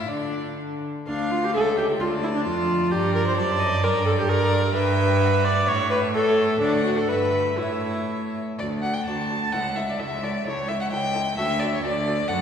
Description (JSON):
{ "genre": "quick classical-period movement for string quartet", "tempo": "130 BPM", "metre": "2/4", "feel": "rubato", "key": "D minor, D major from 4.7 s", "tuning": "A4 = 440 Hz", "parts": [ { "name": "rich violin", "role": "melody", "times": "0.0-12.4 s", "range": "A4 to Bb5", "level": "-35 LUFS", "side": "left 4 dB", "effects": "none" }, { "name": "warm violin", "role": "second line", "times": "0.0-12.4 s", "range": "D4 to A5", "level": "-28 LUFS", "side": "left 2 dB", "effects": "none" }, { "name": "warm viola", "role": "accompaniment", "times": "0.0-12.4 s", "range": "D4 to D5", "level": "-24 LUFS", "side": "equal", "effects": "none" }, { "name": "rich cello", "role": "bass", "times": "0.0-12.4 s", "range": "C#2 to D3", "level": "-26 LUFS", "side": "right 2 dB", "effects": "none" } ], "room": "wet concert hall reverb, RT60 2.2 s", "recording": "heard from further back in the room", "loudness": "-21 LUFS", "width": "side -8 dB against mid", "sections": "0.0-1.1 A section; 1.1-8.6 B section; 8.6-12.4 C section", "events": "none", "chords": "0.1 N.C.; 1.1 Dm; 1.5 A7/C#; 2.0 Dm; 2.9 Gm; 3.4 D7/F#; 3.8 Gm; 4.7 Em/G; 5.7 A; 6.6 D; 7.1 Em/G; 7.6 A; 8.6 D; 9.5 A/C#; 11.4 D" }